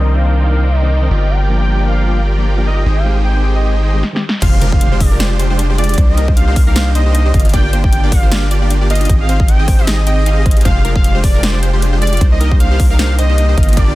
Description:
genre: future bass.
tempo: 154 BPM.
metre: 4/4.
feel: swing 56% on 16ths, half-time.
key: F dorian.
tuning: A4 = 440 Hz.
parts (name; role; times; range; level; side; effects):
warm velvety synth lead; melody; 0.0-13.9 s; D5 to G5; -22 LUFS; equal; chorus, sidechain pumping, dub echo.
bright tine electric piano; accompaniment; 0.0-4.2 s; Eb3 to Bb4; -24 LUFS; left 2 dB; medium stereo tremolo, sidechain pumping.
airy breathy pad; sustained chords; 0.0-4.0 s; C3 to G5; -29 LUFS; right 1 dB; none.
dense compressed supersaw; riff; 0.0-13.9 s; Ab3 to G5; -21 LUFS; right 1 dB; sidechain pumping, low-pass filter.
long sustained 808-style bass; bass; 0.0-13.9 s; F1 to C2; -13 LUFS; equal; sidechain pumping.
downlifter and impact; sound effects; 0.0-1.3, 4.4-6.0 s; none; -23 LUFS; equal; none.
big-room dance drum kit; drums; 4.0-13.9 s; crash cymbal, hi-hat, rim click, snare drum; -22 LUFS; left 1 dB; low-pass filter on hats, low-pass filter on snare, low-pass filter on toms, low-pass filter on cymbals.
soft round pluck; arpeggios; 4.4-13.9 s; D4 to Eb5; -28 LUFS; left 3 dB; chorus, sidechain pumping, dub echo.
wide unison pluck; arpeggios; 4.4-13.9 s; Bb4 to G5; -29 LUFS; equal; sidechain pumping.
electronic kick drum; drums; 4.4-13.9 s; none; -12 LUFS; equal; none.
room: digital ambience.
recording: dense, heavily limited modern master.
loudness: -10 LUFS.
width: side -17 dB against mid.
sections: 0.0-4.4 A section; 4.4-13.9 B section.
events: break 4.0-4.4; drum fill 4.0-4.4; drop 4.4-13.9; impact 4.4-6.0.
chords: 0.0 Cm9; 1.1 Gm7; 2.9 Abmaj7; 4.4 Fm69; 6.0 Cm9; 7.3 Gm7; 9.1 Abmaj7; 10.7 Fm69; 12.2 Cm9.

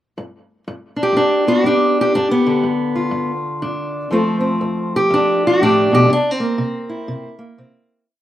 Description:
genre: acoustic country blues, solo or duo.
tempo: 122 BPM.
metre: 4/4.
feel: swing 62% on 8ths.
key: unclear.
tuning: A4 = 440 Hz.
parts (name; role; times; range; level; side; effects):
fingerpicked steel-string acoustic guitar; solo; 0.2-8.2 s; F2 to G4; -15 LUFS; equal; none.
room: light reverb.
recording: recorded outdoors, with no room sound.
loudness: -14 LUFS.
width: side -12 dB against mid.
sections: 0.2-8.1 head.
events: fade-out 6.1-8.1.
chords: 0.2 G7; 4.1 F; 6.1 C7.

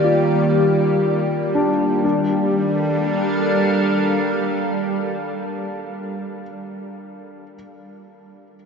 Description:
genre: ambient.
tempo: 60 BPM.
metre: 3/4.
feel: straight.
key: G minor.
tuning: A4 = 440 Hz.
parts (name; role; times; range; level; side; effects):
evolving wavetable pad; sustained chords; 0.0-5.8 s; Eb3 to F5; -20 LUFS; equal; chorus, built-in reverb, phaser.
felt-muted upright piano; arpeggios; 0.0-7.6 s; D4 to F4; -25 LUFS; left 1 dB; ping-pong delay.
bowed-like drone; drone; 0.0-5.9 s; G3; -24 LUFS; left 1 dB; built-in reverb.
room: wet huge ambient reverb, RT60 8.9 s.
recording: nothing above 7.7 kHz.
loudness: -17 LUFS.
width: side -6 dB against mid.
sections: 0.0-2.0 A section; 2.0-5.0 B section.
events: none.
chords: 0.0 Ebmaj7; 2.0 Gm7.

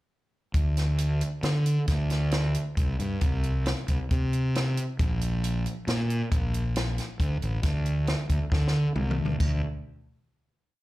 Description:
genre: math rock and midwest emo.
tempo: 136 BPM.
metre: 5/4.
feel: straight.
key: unclear.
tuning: A4 = 440 Hz.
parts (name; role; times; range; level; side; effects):
fuzz fingered electric bass; bass; 0.5-9.6 s; A1 to D3; -26 LUFS; equal; overdrive.
compact cocktail drum kit; drums; 0.5-9.5 s; hi-hat, kick drum, snare drum, splash cymbal, toms; -28 LUFS; equal; none.
room: little or no reverb.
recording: live gig heard through the venue's PA, club reverb.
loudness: -24 LUFS.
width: side -18 dB against mid.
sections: 0.5-9.4 A section; 9.4-10.8 final note.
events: drum fill 8.5-9.4.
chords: none.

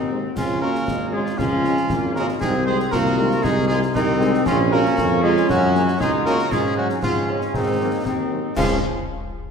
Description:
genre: military-style march for wind band.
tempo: 117 BPM.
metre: 2/4.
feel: straight.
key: Db major.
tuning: A4 = 435 Hz.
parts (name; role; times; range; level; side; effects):
mellow cornet; melody; 0.0-8.8 s; Eb4 to C5; -26 LUFS; equal; none.
mellow euphonium; second line; 0.0-8.8 s; Eb3 to C4; -26 LUFS; right 3 dB; none.
warm woodwind section; second line; 0.0-8.8 s; C4 to F5; -26 LUFS; left 2 dB; none.
dark trombone section; sustained chords; 0.0-8.8 s; F3 to F4; -27 LUFS; equal; none.
mellow tuba; bass; 0.0-8.8 s; Ab1 to Ab2; -23 LUFS; right 1 dB; none.
warm French horn section; accompaniment; 0.1-8.8 s; Db3 to Db4; -30 LUFS; left 3 dB; none.
concert snare drum, clash cymbals and concert bass drum; drums; 0.4-8.9 s; none; -29 LUFS; left 1 dB; none.
room: wet scoring stage reverb, RT60 2.0 s.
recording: recorded in a church or concert hall.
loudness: -18 LUFS.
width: side -6 dB against mid.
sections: 0.0-8.6 A section.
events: none.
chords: 0.4 Db; 2.4 Ab/C; 4.5 Bbm7; 5.5 Gb; 6.5 Db5/Ab; 7.5 Ab7; 8.6 Db.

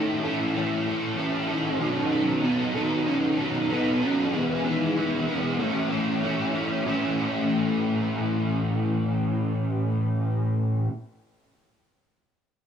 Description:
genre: rock.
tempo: 95 BPM.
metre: 4/4.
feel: straight.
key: A lydian.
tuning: A4 = 440 Hz.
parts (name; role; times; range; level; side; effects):
soft octave-layered synth lead; melody; 0.0-10.1 s; A3 to E4; -29 LUFS; left 1 dB; chorus, phaser, analog delay.
overdriven electric guitar; riff; 0.0-10.9 s; A2 to A4; -24 LUFS; equal; ensemble chorus, cassette tape.
room: little or no reverb.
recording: home recording on cassette, small room ambience.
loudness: -23 LUFS.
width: side -8 dB against mid.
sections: 0.0-6.8 A section; 6.8-9.4 B section.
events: none.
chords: 0.0 A; 1.8 B7; 4.3 Emaj7; 5.6 A.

